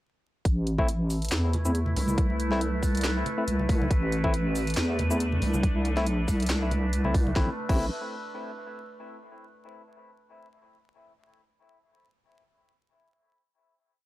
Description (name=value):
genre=deep dubstep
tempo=139 BPM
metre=4/4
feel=swing 55% on 16ths, half-time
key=A minor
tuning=A4 = 440 Hz
part: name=overtone-sweeping drone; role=sustained chords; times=1.0-7.6 s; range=A3 to B4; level=-34 LUFS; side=right 2 dB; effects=chorus, built-in reverb
part: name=deep soft wobble bass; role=bass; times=0.5-7.9 s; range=A1 to E2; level=-26 LUFS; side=equal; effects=chorus
part: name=electronic kick drum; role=drums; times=0.5-7.8 s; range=none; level=-25 LUFS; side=equal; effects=none
part: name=garage drum kit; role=drums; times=0.5-7.8 s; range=crash cymbal, handclaps, hi-hat, shaker, snare drum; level=-34 LUFS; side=equal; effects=none
part: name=barky tine electric piano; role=stabs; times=0.8-7.9 s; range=A3 to E4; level=-33 LUFS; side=left 2 dB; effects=vintage 12-bit sampler grit, dub echo
part: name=congas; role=percussion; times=1.5-7.3 s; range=none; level=-35 LUFS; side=right 1 dB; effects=none
room=little or no reverb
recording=dry, gritty hardware recording, vinyl crackle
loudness=-24 LUFS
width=side -16 dB against mid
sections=0.5-7.4 drop; 7.4-9.1 final chord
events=drop 0.5-7.4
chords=0.5 Am